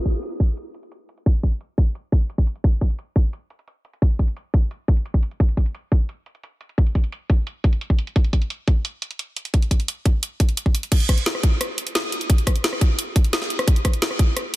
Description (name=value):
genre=drum and bass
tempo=174 BPM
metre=4/4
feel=straight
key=none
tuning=none
part: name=drum and bass drum kit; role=drums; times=0.1-14.6 s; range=crash cymbal, hi-hat, rim click, snare drum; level=-24 LUFS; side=equal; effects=low-pass filter on hats, low-pass filter on snare, low-pass filter on cymbals, low-pass filter on room
part: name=electronic kick drum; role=drums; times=0.1-14.3 s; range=none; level=-17 LUFS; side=equal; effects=none
room=little or no reverb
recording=dense, heavily limited modern master, low-pass filter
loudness=-19 LUFS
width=side -18 dB against mid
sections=0.0-10.9 A section; 10.9-14.6 B section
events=filter sweep on drum 0.0-10.9; filter sweep 0.0-10.9; drop 10.9-14.6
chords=none